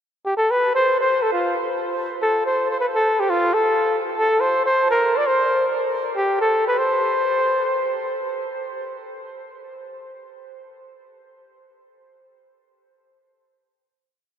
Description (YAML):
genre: jazz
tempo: 207-244 BPM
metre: 4/4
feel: swing 58% on 8ths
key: unclear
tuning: A4 = 440 Hz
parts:
  - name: breathy flugelhorn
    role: solo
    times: 0.3-8.1 s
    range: F4 to D5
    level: -19 LUFS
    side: equal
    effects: none
room: wet huge ambient reverb, RT60 7.1 s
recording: in a vast, echoing space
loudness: -18 LUFS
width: side -9 dB against mid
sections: 0.0-0.3 pickup bar; 0.3-8.3 A section; 8.3-10.7 final hit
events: slowing down 6.2-8.3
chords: none